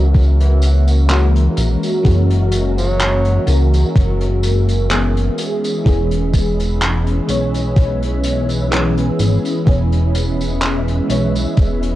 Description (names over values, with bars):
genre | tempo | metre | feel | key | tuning
vaporwave | 63 BPM | 4/4 | swing 54% on 16ths | E lydian | A4 = 439 Hz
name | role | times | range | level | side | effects
FM electric piano with soft pad layer | accompaniment | 0.0-12.0 s | E3 to C#5 | -20 LUFS | left 1 dB | phaser, lush chorus, cassette tape, analog delay
soft string machine | sustained chords | 0.0-12.0 s | G#3 to E5 | -25 LUFS | right 1 dB | phaser, ensemble chorus
chorused synth bass | bass | 0.0-12.0 s | E1 to C#2 | -16 LUFS | equal | tube saturation
electronic kick drum | drums | 0.1-11.8 s | none | -14 LUFS | equal | overdrive
loose indie drum kit | drums | 0.1-12.0 s | handclaps, hi-hat, tambourine | -24 LUFS | equal | none
breathy tenor saxophone | melody | 2.8-3.5 s | F#3 | -26 LUFS | right 1 dB | tape echo
room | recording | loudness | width
small room ambience | cassette tape | -13 LUFS | side -15 dB against mid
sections
0.0-12.0 A section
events
none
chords
0.0 F#9; 5.4 E6